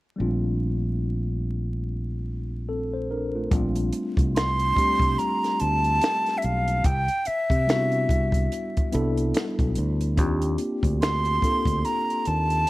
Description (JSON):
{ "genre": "R&B, neo-soul", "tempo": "72 BPM", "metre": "4/4", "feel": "swing 60% on 16ths", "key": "Bb major", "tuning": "A4 = 440 Hz", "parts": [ { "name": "mellow tine electric piano", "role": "accompaniment", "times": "0.2-12.7 s", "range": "G3 to C5", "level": "-29 LUFS", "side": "left 1 dB", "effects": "medium stereo tremolo" }, { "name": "fingered electric bass", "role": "bass", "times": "0.2-12.6 s", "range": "Bb1 to C3", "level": "-26 LUFS", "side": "equal", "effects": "none" }, { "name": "compact cocktail drum kit", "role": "drums", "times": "3.5-12.7 s", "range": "finger snaps, hi-hat, kick drum, snare drum", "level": "-26 LUFS", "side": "equal", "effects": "none" }, { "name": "reedy concert flute", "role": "melody", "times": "4.4-12.7 s", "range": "E5 to C6", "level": "-24 LUFS", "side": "equal", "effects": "none" } ], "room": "studio reverb", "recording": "vinyl crackle", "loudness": "-22 LUFS", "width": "side -18 dB against mid", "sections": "0.2-3.5 A section; 3.5-12.7 B section", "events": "none", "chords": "0.2 Bbmaj9; 3.5 Bbmaj9 (rootless); 6.8 Cmaj9; 10.2 Ebmaj9", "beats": "| 0.18 1.01 1.84 2.68 | 3.51 4.34 5.18 6.01 | 6.84 7.68 8.51 9.34 | 10.18 11.01 11.84 12.68" }